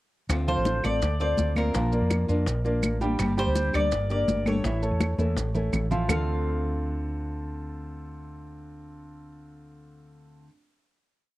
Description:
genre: latin, Cuban son and guajira.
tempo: 166 BPM.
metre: 4/4.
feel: straight.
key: D minor.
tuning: A4 = 441 Hz.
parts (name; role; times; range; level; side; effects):
nylon-string guitar; accompaniment; 0.3-10.5 s; D3 to G4; -33 LUFS; left 2 dB; none.
woody fretless electric bass; bass; 0.3-10.4 s; G1 to F2; -28 LUFS; equal; none.
bongos; percussion; 0.3-6.2 s; none; -36 LUFS; left 4 dB; none.
claves; percussion; 0.3-6.2 s; none; -34 LUFS; right 3 dB; none.
congas; percussion; 0.3-6.2 s; none; -31 LUFS; equal; none.
maracas; percussion; 0.3-6.2 s; none; -39 LUFS; right 7 dB; none.
Cuban tres; melody; 0.5-10.5 s; Bb4 to F5; -30 LUFS; left 1 dB; none.
dark concert grand piano; arpeggios; 0.5-10.4 s; D3 to G5; -32 LUFS; right 2 dB; none.
room: light reverb.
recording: cassette tape.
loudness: -24 LUFS.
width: side -17 dB against mid.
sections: 0.3-6.1 verse; 6.1-9.0 final chord.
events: drum fill 5.2-6.1.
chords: 0.3 Dm7; 1.7 Bb; 3.2 Gm; 4.6 A; 6.1 Dm7.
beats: | 0.29 0.66 1.02 1.38 | 1.75 2.11 2.47 2.83 | 3.19 3.56 3.92 4.28 | 4.64 5.01 5.37 5.73 | 6.09 6.45 6.82 7.18 | 7.54 7.90 8.27 8.63.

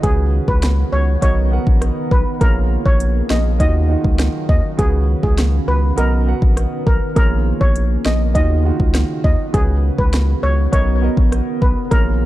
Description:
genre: dancehall.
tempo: 101 BPM.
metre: 4/4.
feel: straight.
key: unclear.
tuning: A4 = 440 Hz.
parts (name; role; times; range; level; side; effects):
steel pan; melody; 0.0-12.0 s; Ab4 to Eb5; -23 LUFS; equal; ping-pong delay.
clear grand piano; accompaniment; 0.0-12.3 s; Db3 to F#5; -25 LUFS; right 5 dB; none.
deep dark ambient pad; sustained chords; 0.0-12.3 s; Cb4; -26 LUFS; equal; chorus, built-in reverb, sidechain pumping.
saturated sub bass; bass; 0.0-12.3 s; A#1 to Eb2; -17 LUFS; equal; none.
afro-pop drum kit; drums; 0.0-12.1 s; hi-hat, kick drum, rim click, snare drum; -17 LUFS; equal; none.
room: digital ambience.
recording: dark, warm production.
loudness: -14 LUFS.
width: side -15 dB against mid.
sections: 0.0-12.3 A section.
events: none.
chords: 0.0 Db7sus4; 1.2 Bmaj7; 2.4 Bbm7; 3.6 Ebmadd9; 4.8 Db7sus4; 6.0 Bmaj7; 7.2 Bbm7; 8.4 Ebmadd9; 9.5 Db7sus4; 10.7 Bmaj7.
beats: | 0.04 0.63 1.22 1.82 | 2.41 3.00 3.60 4.19 | 4.79 5.38 5.97 6.57 | 7.16 7.76 8.35 8.95 | 9.54 10.13 10.73 11.32 | 11.92.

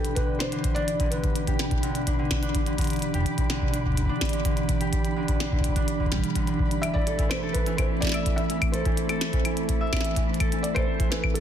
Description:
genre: IDM.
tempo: 126 BPM.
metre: 4/4.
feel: straight.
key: E minor.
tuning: A4 = 440 Hz.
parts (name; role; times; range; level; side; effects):
felt-muted upright piano; melody; 0.0-2.5, 6.8-11.4 s; A4 to E5; -32 LUFS; right 1 dB; digital delay.
glassy FM pad; sustained chords; 0.0-11.4 s; B2 to A4; -30 LUFS; right 2 dB; ensemble chorus, built-in reverb.
Celtic harp; arpeggios; 0.0-11.4 s; D3 to E5; -31 LUFS; equal; tape echo.
glitchy drum kit; drums; 0.0-11.4 s; claves, hi-hat, snare drum; -32 LUFS; left 1 dB; soft clipping on snare, ping-pong delay.
flickering grainy texture; texture; 0.0-11.4 s; D4 to B5; -36 LUFS; equal; built-in reverb.
electronic kick drum; drums; 0.2-11.3 s; none; -26 LUFS; equal; none.
room: light reverb.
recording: dense, heavily limited modern master.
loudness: -23 LUFS.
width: side -9 dB against mid.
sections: 0.0-11.4 A section.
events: none.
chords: 0.0 Em7; 6.8 Am.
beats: 0.17 0.64 | 1.12 1.59 2.07 2.55 | 3.02 3.50 3.97 4.45 | 4.93 5.40 5.88 6.36 | 6.83 7.31 7.78 8.26 | 8.74 9.21 9.69 10.16 | 10.64 11.12.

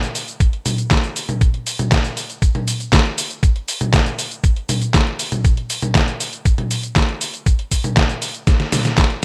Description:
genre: italo disco.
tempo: 119 BPM.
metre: 4/4.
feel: straight.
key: none.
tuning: none.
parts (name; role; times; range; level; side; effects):
detuned 8-bit digital drum machine; drums; 0.0-9.2 s; cabasa, handclaps, hi-hat, snare drum, toms; -21 LUFS; equal; none.
electronic kick drum; drums; 0.4-9.1 s; none; -18 LUFS; equal; none.
room: light reverb.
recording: bright 1980s-style digital production.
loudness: -18 LUFS.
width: mono.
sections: 0.0-9.2 A section.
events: drum fill 8.5-9.2.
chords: none.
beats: 0.41 0.91 | 1.41 1.92 2.42 2.93 | 3.43 3.93 4.44 4.94 | 5.45 5.95 6.46 6.96 | 7.46 7.97 8.47 8.98.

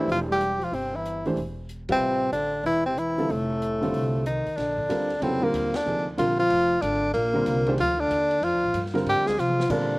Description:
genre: modal jazz.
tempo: 187 BPM.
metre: 4/4.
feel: swing 63% on 8ths.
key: Bb mixolydian from 4.6 s.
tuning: A4 = 440 Hz.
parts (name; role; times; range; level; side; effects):
breathy tenor saxophone; melody; 0.0-10.0 s; A3 to Ab4; -24 LUFS; equal; slapback echo.
dark trombone; second line; 0.0-10.0 s; A2 to Ab3; -31 LUFS; left 2 dB; none.
warm baby grand piano; accompaniment; 0.0-10.0 s; C3 to E5; -28 LUFS; right 1 dB; none.
upright bass; bass; 0.0-10.0 s; E1 to C3; -32 LUFS; equal; none.
open jazz drum kit; drums; 0.1-9.8 s; crash cymbal, hi-hat, kick drum, ride cymbal, snare drum, toms; -40 LUFS; equal; none.
room: little or no reverb.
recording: recorded outdoors, with no room sound.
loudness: -22 LUFS.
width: side -22 dB against mid.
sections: 0.0-4.6 A section; 4.6-10.0 B section.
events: band accent 1.9, 5.7; drum fill 9.4-9.7.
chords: 0.0 Am; 3.3 F7; 4.6 Bb9.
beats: 0.09 0.41 | 0.73 1.05 1.37 1.69 | 2.02 2.33 2.66 2.98 | 3.30 3.62 3.94 4.26 | 4.58 4.90 5.22 5.54 | 5.86 6.18 6.50 6.83 | 7.14 7.46 7.79 8.10 | 8.42 8.74 9.06 9.38 | 9.70.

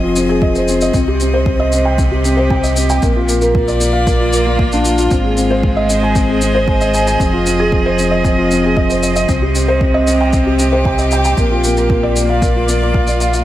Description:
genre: piano and strings electronica.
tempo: 115 BPM.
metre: 4/4.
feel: straight.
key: C minor.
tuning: A4 = 443 Hz.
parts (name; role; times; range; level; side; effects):
rich string quartet; sustained chords; 0.0-13.4 s; Bb2 to Eb5; -18 LUFS; right 2 dB; none.
felt-muted upright piano; riff; 0.0-13.4 s; Bb3 to Ab5; -15 LUFS; left 1 dB; digital delay.
round analog bass; bass; 0.0-13.4 s; F1 to C2; -18 LUFS; equal; sidechain pumping.
shaker; drums; 0.2-13.4 s; none; -24 LUFS; left 1 dB; none.
electronic kick drum; drums; 0.4-13.0 s; none; -17 LUFS; equal; none.
room: moderate lush hall reverb, RT60 1.7 s.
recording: none.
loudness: -11 LUFS.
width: side -13 dB against mid.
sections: 0.0-13.4 A section.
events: none.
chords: 0.0 Fm7; 0.9 Cm; 3.0 Bb; 5.1 Ab; 7.2 Fm7; 9.3 Cm; 11.4 Bb.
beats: 0.42 | 0.94 1.46 1.99 2.51 | 3.03 3.55 4.07 4.59 | 5.12 5.64 6.16 6.68 | 7.20 7.72 8.25 8.77 | 9.29 9.81 10.33 10.86 | 11.38 11.90 12.42 12.94.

